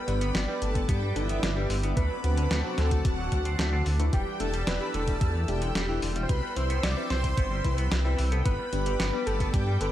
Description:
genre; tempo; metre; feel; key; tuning
synthwave; 111 BPM; 4/4; straight; unclear; A4 = 440 Hz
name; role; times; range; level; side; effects
wide unison lead; melody; 0.0-9.9 s; E4 to D5; -34 LUFS; equal; cassette tape, tape echo
string machine, violins; second line; 0.0-9.9 s; E5 to D6; -40 LUFS; equal; ensemble chorus, tape echo
warm analog pad; sustained chords; 0.0-9.9 s; C4 to E6; -38 LUFS; left 1 dB; chorus, sidechain pumping
clean electric guitar; arpeggios; 0.0-9.9 s; D3 to C4; -38 LUFS; right 1 dB; spring reverb, tape echo
FM electric piano with soft pad layer; stabs; 0.1-9.9 s; B3 to C5; -36 LUFS; left 2 dB; chorus, phaser
dark detuned saw bass; bass; 0.1-9.9 s; D1 to G2; -28 LUFS; equal; sidechain pumping
clean 12-bit digital drum machine; drums; 0.1-9.9 s; hi-hat, snare drum; -33 LUFS; equal; studio reverb
electronic kick drum; drums; 0.8-9.6 s; none; -28 LUFS; equal; overdrive, studio reverb
room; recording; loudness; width
light reverb; none; -25 LUFS; side -12 dB against mid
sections
0.0-9.9 A section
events
none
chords
0.0 G; 2.0 D7; 4.1 Em7; 6.3 Cmaj7; 8.5 G

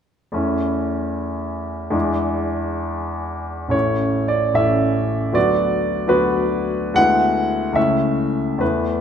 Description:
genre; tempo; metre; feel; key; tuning
classical, romantic character piece for solo piano; 60-81 BPM (dotted quarters); 6/8; rubato; A major; A4 = 440 Hz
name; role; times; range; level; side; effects
bright grand piano; solo; 0.3-9.0 s; A1 to F#5; -18 LUFS; equal; none
room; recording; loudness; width
moderate scoring stage reverb, RT60 1.9 s; none; -18 LUFS; side -8 dB against mid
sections
0.3-3.7 A section; 3.7-9.0 B section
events
none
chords
0.3 A/E; 1.9 E7; 3.7 A; 5.4 Bm/D; 7.0 E7/D; 7.8 A/C#

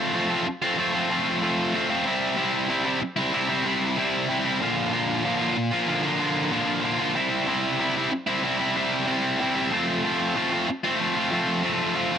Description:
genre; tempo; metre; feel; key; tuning
rock; 94 BPM; 4/4; straight; C mixolydian; A4 = 439 Hz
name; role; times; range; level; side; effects
sludgy distorted guitar; solo; 0.0-12.2 s; Bb2 to F4; -22 LUFS; equal; overdrive
room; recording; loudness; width
light reverb; none; -22 LUFS; side -8 dB against mid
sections
0.0-12.2 A section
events
none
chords
0.0 F; 2.1 C; 4.6 Bb; 7.2 C; 9.7 F

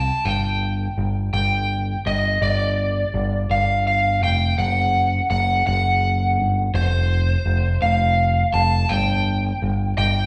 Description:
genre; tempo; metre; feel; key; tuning
post-rock; 56 BPM (dotted quarters); 6/8; straight; unclear; A4 = 440 Hz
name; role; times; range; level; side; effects
lead guitar through a small cranked amp; melody; 0.0-10.3 s; C5 to A5; -24 LUFS; equal; overdrive
growling picked electric bass; bass; 0.0-10.3 s; F1 to C2; -23 LUFS; equal; overdrive
room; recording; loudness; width
wet recital hall reverb, RT60 1.5 s; recorded in a church or concert hall; -20 LUFS; mono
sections
0.3-10.3 A section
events
none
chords
0.3 G5; 4.6 N.C.; 6.7 F5; 8.9 G5

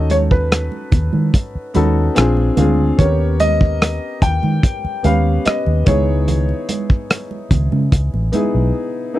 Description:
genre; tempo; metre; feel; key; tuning
lush 1970s-style soul; 73 BPM; 4/4; straight; C# minor; A4 = 440 Hz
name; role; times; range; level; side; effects
clear concert grand piano; melody; 0.0-8.7 s; B4 to G5; -22 LUFS; equal; none
warm baby grand piano; accompaniment; 0.0-9.2 s; B3 to B5; -22 LUFS; left 2 dB; none
vintage muted fingered electric bass; bass; 0.0-8.7 s; A1 to D#3; -16 LUFS; equal; none
warm soul drum kit; drums; 0.1-8.5 s; hi-hat, kick drum, rim click; -15 LUFS; equal; none
congas; percussion; 0.1-8.5 s; none; -24 LUFS; right 6 dB; none
room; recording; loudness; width
little or no reverb; dry, close 1970s-style studio recording; -14 LUFS; side -15 dB against mid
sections
0.0-9.2 A section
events
grand piano fill 1.3-3.0; break 8.7-9.2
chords
0.0 B9/D#; 2.2 A#7; 3.0 D#7b13; 5.9 C#m9

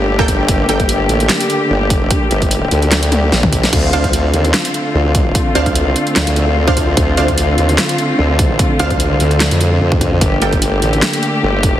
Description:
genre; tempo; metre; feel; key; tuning
heavy wobble dubstep; 148 BPM; 4/4; swing 54% on 16ths, half-time; D minor; A4 = 440 Hz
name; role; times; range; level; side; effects
warm studio string section; sustained chords; 0.0-11.8 s; D3 to G4; -17 LUFS; left 1 dB; sidechain pumping, low-pass filter
formant-sweep wobble bass; bass; 0.0-11.8 s; G1 to F2; -15 LUFS; equal; chorus, overdrive
orchestra-hit-like synth stab; stabs; 0.2-0.8, 3.9-10.6 s; Bb3 to G5; -21 LUFS; right 2 dB; built-in reverb, tape echo
electronic kick drum; drums; 0.2-11.7 s; none; -16 LUFS; equal; studio reverb
dubstep drum kit; drums; 0.3-11.7 s; crash cymbal, handclaps, hi-hat, snare drum, toms; -18 LUFS; equal; studio reverb
room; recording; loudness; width
light reverb; heavily compressed radio sound, multiband compression; -11 LUFS; side -12 dB against mid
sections
0.0-11.8 A section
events
drum fill 3.1-3.7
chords
0.0 Gmadd9; 3.7 Dm7; 10.2 Gmadd9

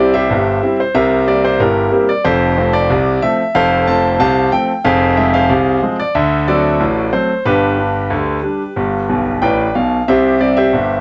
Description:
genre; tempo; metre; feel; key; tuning
ragtime piano; 92 BPM; 2/4; straight; C major; A4 = 440 Hz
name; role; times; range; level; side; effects
bright concert grand piano; solo; 0.0-11.0 s; F1 to A5; -14 LUFS; equal; none
room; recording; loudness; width
moderate booth ambience, RT60 0.2 s; cassette tape, nothing above 7.9 kHz; -14 LUFS; mono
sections
0.0-11.0 A section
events
grand piano fill 9.1-10.1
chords
0.0 C; 1.0 C7; 2.3 F; 4.8 Fm; 6.1 D7; 7.5 G; 10.1 C

